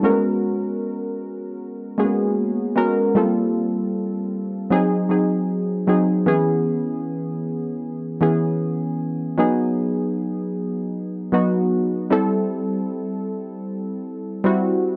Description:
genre	R&B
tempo	77 BPM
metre	4/4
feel	straight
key	unclear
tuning	A4 = 436 Hz
part	warm analog keys	solo	0.0-15.0 s	E3 to A#4	-22 LUFS	equal	chorus
room	moderate studio reverb, RT60 0.6 s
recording	dry, gritty hardware recording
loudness	-22 LUFS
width	mono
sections	0.0-6.3 A section; 6.3-15.0 B section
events	none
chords	0.0 G#m11; 3.2 Gm11; 4.7 G#7; 6.3 C#m7; 9.4 G#m7; 12.1 Am7

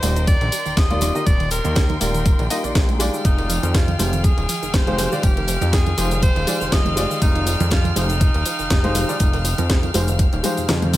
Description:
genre	nu-disco, nu disco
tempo	121 BPM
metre	4/4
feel	swing 55% on 16ths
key	unclear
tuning	A4 = 436 Hz
part	warm tenor saxophone	melody	0.0-10.7 s	Eb4 to Eb5	-27 LUFS	equal	vintage 12-bit sampler grit, digital delay
part	dark grand piano	accompaniment	0.0-11.0 s	Ab3 to Eb5	-26 LUFS	left 1 dB	sidechain pumping
part	warm chamber violin section	sustained chords	0.0-11.0 s	Ab3 to F6	-29 LUFS	equal	sidechain pumping
part	wide unison pluck	arpeggios	0.0-11.0 s	C3 to G3	-29 LUFS	right 3 dB	sidechain pumping, digital delay
part	fat analog bass	bass	0.0-11.0 s	Eb1 to F2	-22 LUFS	equal	none
part	house drum kit	drums	0.0-11.0 s	hi-hat, shaker, snare drum, toms	-25 LUFS	left 1 dB	none
part	congas and tambourine	percussion	0.0-11.0 s	none	-30 LUFS	right 3 dB	none
part	electronic kick drum	drums	0.3-10.3 s	none	-18 LUFS	equal	overdrive
room	digital ambience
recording	none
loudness	-16 LUFS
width	side -15 dB against mid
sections	0.0-11.0 A section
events	drum fill 10.4-11.0; kick drops out 10.7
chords	0.0 Ebmaj7; 3.2 Fm9

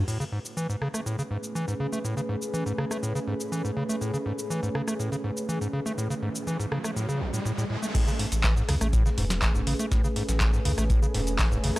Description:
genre	acid house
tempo	122 BPM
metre	4/4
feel	straight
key	A major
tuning	A4 = 440 Hz
part	dark analog pad	sustained chords	0.0-11.8 s	A3 to B4	-33 LUFS	equal	chorus, sidechain pumping
part	saturated sub bass	bass	0.0, 7.9-11.7 s	E1 to C#2	-28 LUFS	equal	sidechain pumping
part	overdriven acid bass	riff	0.1-11.8 s	A1 to A3	-30 LUFS	equal	vintage 12-bit sampler grit, sidechain pumping, analog delay
part	booming analog drum machine	drums	0.1-11.8 s	crash cymbal, handclaps, hi-hat, rim click, shaker, snare drum, toms	-32 LUFS	equal	none
part	riser	sound effects	5.9-7.9 s	none	-37 LUFS	right 1 dB	none
part	crunchy breakbeat drum kit	drums	7.9-11.8 s	hi-hat, shaker, snare drum	-48 LUFS	equal	none
part	electronic kick drum	drums	7.9-11.5 s	none	-25 LUFS	equal	none
room	little or no reverb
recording	dry, gritty hardware recording, transformer saturation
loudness	-25 LUFS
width	side -18 dB against mid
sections	0.1-7.9 A section; 7.9-11.8 B section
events	riser 5.9-7.9; drop 7.9-11.8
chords	0.1 Amaj9

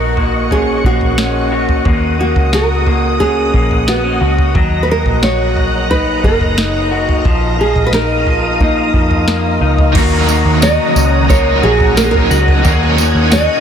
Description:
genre	dream pop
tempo	89 BPM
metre	4/4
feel	straight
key	Eb minor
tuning	A4 = 440 Hz
part	nylon-string guitar	melody	0.0-13.6 s	Eb4 to Eb5	-18 LUFS	right 2 dB	tape echo
part	ensemble organ-string	sustained chords	0.0-13.6 s	Bb3 to Eb6	-19 LUFS	equal	ensemble chorus
part	electric guitar through a small old amp	arpeggios	0.0-13.6 s	F3 to Gb4	-18 LUFS	left 3 dB	analog chorus, tape echo
part	vintage muted picked electric bass	bass	0.0-13.5 s	Gb1 to F2	-17 LUFS	equal	none
part	soft vintage rhythm box	drums	0.2-13.5 s	crash cymbal, kick drum, snare drum, tambourine, toms	-16 LUFS	equal	none
part	crunchy overdriven guitar	accompaniment	9.9-13.6 s	Eb3 to Bb4	-18 LUFS	right 3 dB	tremolo, wide subtle chorus
room	light reverb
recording	dense, heavily limited modern master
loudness	-10 LUFS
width	side -8 dB against mid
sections	0.0-9.9 A section; 9.9-13.6 B section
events	none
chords	0.0 Ebm7; 4.6 Gb6; 7.2 Bbsus4; 9.9 Ebm7

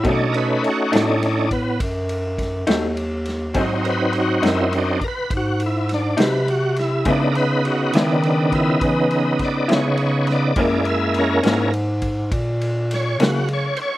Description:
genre	slow blues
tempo	69 BPM (dotted quarters)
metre	12/8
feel	straight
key	unclear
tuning	A4 = 444 Hz
part	electric guitar through a small old amp	accompaniment	0.0-13.4 s	F#2 to E4	-23 LUFS	left 2 dB	tremolo, slapback echo
part	bright tonewheel organ	sustained chords	0.0-14.0 s	C#3 to E5	-20 LUFS	equal	slow rotary speaker, overdrive, chorus vibrato
part	mellow bass clarinet	bass	0.0-13.8 s	D#2 to E3	-22 LUFS	equal	none
part	vintage drum kit	drums	0.0-13.9 s	kick drum, ride cymbal, snare drum	-26 LUFS	equal	none
room	little or no reverb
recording	none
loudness	-17 LUFS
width	side -15 dB against mid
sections	0.0-14.0 A section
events	tonewheel organ solo 0.0-14.0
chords	0.1 B7; 3.6 G#7; 7.1 C#m7; 10.6 F#7

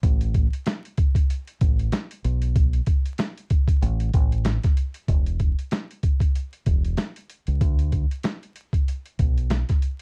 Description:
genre	hip hop, boom-bap hip-hop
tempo	95 BPM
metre	4/4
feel	swing 57% on 16ths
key	B minor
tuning	A4 = 440 Hz
part	deep dub fingered electric bass	bass	0.0-9.6 s	E1 to D2	-26 LUFS	equal	none
part	boom bap sampler-style drum kit	drums	0.0-10.0 s	hi-hat, kick drum, snare drum	-24 LUFS	equal	none
room	little or no reverb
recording	dark, warm production, vinyl crackle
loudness	-23 LUFS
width	mono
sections	0.0-5.1 A section; 5.1-10.0 B section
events	none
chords	none

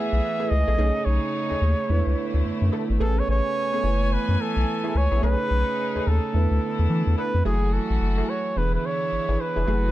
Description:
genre	R&B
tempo	108 BPM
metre	4/4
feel	swing 60% on 16ths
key	F# minor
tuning	A4 = 441 Hz
part	trumpet with bucket mute	melody	0.0-9.9 s	G#4 to E5	-27 LUFS	right 1 dB	none
part	mellow tine electric piano	accompaniment	0.0-9.9 s	E3 to G#5	-29 LUFS	right 7 dB	none
part	warm studio string section	sustained chords	0.0-9.9 s	C#3 to G#5	-33 LUFS	left 2 dB	none
part	round analog bass	bass	0.1-9.9 s	E1 to E3	-22 LUFS	left 1 dB	none
part	funky polysynth comp	stabs	0.4-9.9 s	A3 to A4	-33 LUFS	left 1 dB	chorus
room	studio ambience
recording	none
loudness	-21 LUFS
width	side -15 dB against mid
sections	0.0-7.5 A section; 7.5-9.9 B section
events	none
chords	0.0 F#m11 (rootless); 0.8 B13; 1.9 E7sus4; 3.0 Amaj9; 3.8 F#m11; 5.2 B13; 6.3 E7sus4; 7.5 F#m9; 8.6 E7

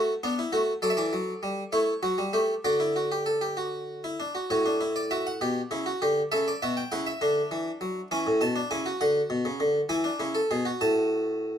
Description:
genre	classical, baroque-style 3-part fugue for harpsichord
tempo	66 BPM (dotted quarters)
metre	6/8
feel	straight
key	D major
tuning	A4 = 440 Hz
part	harpsichord	solo	0.0-11.6 s	A2 to A5	-25 LUFS	equal	none
room	moderate studio reverb, RT60 0.8 s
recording	none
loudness	-25 LUFS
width	side -8 dB against mid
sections	0.0-4.5 A section; 4.5-11.6 B section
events	none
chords	0.0 F#m/A; 0.8 D; 1.7 A7; 2.6 D; 4.5 D/A; 5.4 G/B; 6.3 A7; 7.2 D; 8.1 A; 9.0 D; 9.9 E7; 10.8 F#m/A

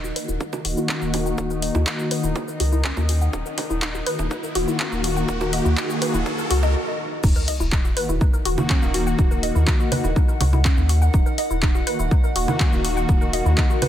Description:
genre	melodic techno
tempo	123 BPM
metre	4/4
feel	straight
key	Eb minor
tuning	A4 = 437 Hz
part	woody wave-folded pluck	arpeggios	0.0-13.9 s	Bb3 to Gb5	-28 LUFS	left 1 dB	wide subtle chorus, sidechain pumping, digital delay
part	round analog bass	bass	0.0-13.5 s	Eb1 to Eb2	-22 LUFS	equal	sidechain pumping
part	analog drone	drone	0.0-6.7 s	Eb3 to Eb4	-35 LUFS	left 2 dB	chorus, sidechain pumping
part	house drum kit	drums	0.0-13.9 s	congas, crash cymbal, handclaps, hi-hat, shaker	-27 LUFS	right 1 dB	high-pass filter on perc, high-pass filter on hats, high-pass filter on snare, high-pass filter on cymbals
part	riser and sub drop	sound effects	0.1-9.2 s	none	-32 LUFS	right 1 dB	none
part	warbly tape-like pad	texture	0.0-13.9 s	Eb4 to Gb5	-33 LUFS	right 2 dB	chorus, built-in reverb, phaser, sidechain pumping
part	brassy analog pad	stabs	0.2-13.9 s	Eb3 to Gb4	-26 LUFS	left 2 dB	chorus, sidechain pumping, digital delay
part	electronic kick drum	drums	0.4-13.7 s	none	-19 LUFS	equal	high-pass filter on kick
room	light reverb, digital ambience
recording	dense, heavily limited modern master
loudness	-18 LUFS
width	side -11 dB against mid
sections	0.0-7.2 A section; 7.2-13.9 B section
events	build-up 0.0-7.2; filter sweep on synth pluck 0.0-7.2; filter sweep on analog synth pad 0.0-7.2; riser 0.1-6.7; stop 6.7-7.2; drop 7.2-13.9; impact 7.2-9.2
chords	0.0 Ebm

